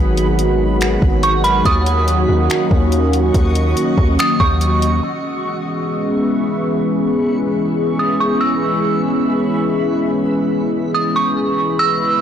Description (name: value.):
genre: hip hop, atmospheric cloud-rap.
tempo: 142 BPM.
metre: 4/4.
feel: half-time.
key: unclear.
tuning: A4 = 440 Hz.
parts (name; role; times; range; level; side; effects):
dark analog pad; sustained chords; 0.0-12.2 s; C#3 to G#4; -17 LUFS; left 1 dB; chorus, sidechain pumping, low-pass filter.
long sustained 808-style bass; bass; 0.0-5.0 s; G#1 to D#2; -17 LUFS; equal; none.
backwards swelling texture; texture; 0.0-11.8 s; F#4 to C#6; -27 LUFS; equal; built-in reverb.
smooth R&B drum kit; drums; 0.2-4.9 s; finger snaps, hi-hat, kick drum; -18 LUFS; equal; soft clipping on snare.
dark detuned synth bell; melody; 1.2-12.2 s; B5 to E6; -20 LUFS; right 3 dB; chorus, low-pass filter, digital delay.
room: light reverb, digital ambience.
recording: blown-out, overdriven recording, overdrive.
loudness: -14 LUFS.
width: side -9 dB against mid.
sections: 0.0-5.0 A section; 5.0-11.8 B section.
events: filter sweep 5.0-11.8.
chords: 0.0 G#m7; 1.7 D#m7; 5.0 C#m7.